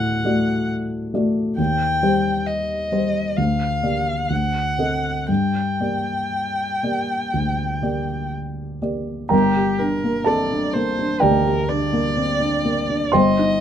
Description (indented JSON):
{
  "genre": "classical, romantic duo for violin and grand piano",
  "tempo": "58-68 BPM",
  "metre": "4/4",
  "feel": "rubato",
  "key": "G minor",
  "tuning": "A4 = 442 Hz",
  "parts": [
    { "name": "rich violin", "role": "melody", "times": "0.0-13.6 s", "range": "G4 to G5", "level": "-24 LUFS", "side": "left 1 dB", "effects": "none" },
    { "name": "dark baby grand piano", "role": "accompaniment", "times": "0.0-13.6 s", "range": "G1 to C6", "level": "-20 LUFS", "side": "equal", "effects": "none" }
  ],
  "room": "light reverb",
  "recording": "close, detailed microphones",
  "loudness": "-18 LUFS",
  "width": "side -9 dB against mid",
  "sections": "0.0-9.3 A section; 9.3-13.6 B section",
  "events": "none",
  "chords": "0.0 D; 1.6 Cm/Eb; 3.4 Gm/D; 4.3 D7b9; 5.3 Gm"
}